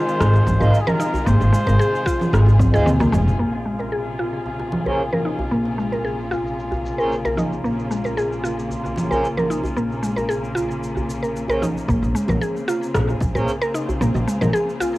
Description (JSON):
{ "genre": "organic downtempo", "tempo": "113 BPM", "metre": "4/4", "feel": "swing 53% on 16ths", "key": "Bb minor", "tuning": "A4 = 436 Hz", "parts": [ { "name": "trumpet with cup mute", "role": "melody", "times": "0.0-2.9 s", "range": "Ab4 to C5", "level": "-26 LUFS", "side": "equal", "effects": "cassette tape, analog delay" }, { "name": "warm studio string section", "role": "sustained chords", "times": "0.0-15.0 s", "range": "C3 to Ab4", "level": "-28 LUFS", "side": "left 1 dB", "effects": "sidechain pumping, low-pass filter" }, { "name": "mallet-like synth pluck", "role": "arpeggios", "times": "0.0-15.0 s", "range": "Ab3 to Bb4", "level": "-24 LUFS", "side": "equal", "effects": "chorus, vintage 12-bit sampler grit, tape echo" }, { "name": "drifting glass-harmonics texture", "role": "texture", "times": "0.0-11.9 s", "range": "F4", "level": "-35 LUFS", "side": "equal", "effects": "chorus, built-in reverb" }, { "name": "deep house drum kit", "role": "drums", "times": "0.1-15.0 s", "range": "congas, rim click, shaker, toms", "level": "-25 LUFS", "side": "equal", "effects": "overdrive, low-pass filter on perc, cassette tape, low-pass filter on snare, low-pass filter on toms, low-pass filter on room" }, { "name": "upright bass", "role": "bass", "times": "0.2-14.5 s", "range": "F1 to Eb2", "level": "-21 LUFS", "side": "equal", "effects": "sidechain pumping" }, { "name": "djembe", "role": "percussion", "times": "0.2-14.9 s", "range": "none", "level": "-31 LUFS", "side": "right 1 dB", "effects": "none" }, { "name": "electronic kick drum", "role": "drums", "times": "0.5-2.7, 11.9-13.3 s", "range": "none", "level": "-24 LUFS", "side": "equal", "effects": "overdrive, cassette tape" }, { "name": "pedal harmonium", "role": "accompaniment", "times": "0.6-13.5 s", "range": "Ab3 to C5", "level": "-25 LUFS", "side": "right 2 dB", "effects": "sidechain pumping, low-pass filter, tape echo" } ], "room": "moderate booth ambience, RT60 0.2 s", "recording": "home recording on cassette", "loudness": "-18 LUFS", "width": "side -18 dB against mid", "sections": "0.0-3.4 A section; 3.4-11.9 B section; 11.9-15.0 A section", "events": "drum fill 2.6-3.4; filter sweep on drum 3.4-11.9; filter sweep on synth pluck 3.4-11.9", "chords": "0.0 Ab6; 3.4 Bbm9" }